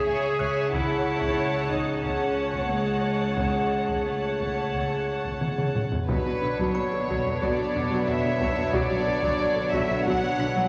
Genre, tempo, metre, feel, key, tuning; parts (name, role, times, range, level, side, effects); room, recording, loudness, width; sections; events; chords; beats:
cinematic, suspense film score; 91 BPM; 4/4; straight; B minor from 6.1 s; A4 = 440 Hz
warm symphonic violin section; melody; 0.0-10.7 s; B4 to A5; -33 LUFS; equal
rich studio violin section; second line; 0.0-10.7 s; D4 to F#5; -34 LUFS; equal
dark studio viola section; accompaniment; 0.0-10.7 s; D3 to C#5; -32 LUFS; equal
concert harp; riff; 0.0-10.7 s; B2 to C#4; -34 LUFS; equal
rich studio cello section; bass; 0.0-10.6 s; B2 to G#4; -34 LUFS; equal
dark symphonic double bass section; bass; 0.1-10.4 s; B1 to C#2; -39 LUFS; equal
music box; texture; 0.4-2.3, 6.7-10.7 s; B5 to B6; -43 LUFS; equal
solo taiko drums; drums; 0.7-10.7 s; -35 LUFS; equal
dark French horn section; sustained chords; 6.1-10.7 s; D3 to F#3; -35 LUFS; equal
wet scoring stage reverb, RT60 1.8 s; nothing above 10.8 kHz; -26 LUFS; mono
0.0-6.1 A section; 6.1-10.7 B section
drum fill 5.4-6.1
0.0 C#m; 0.7 F#m7/C#; 6.1 Bmadd9
0.07 | 0.72 1.37 2.03 2.70 | 3.37 4.05 4.74 5.42 | 6.09 6.76 7.42 8.07 | 8.73 9.39 10.05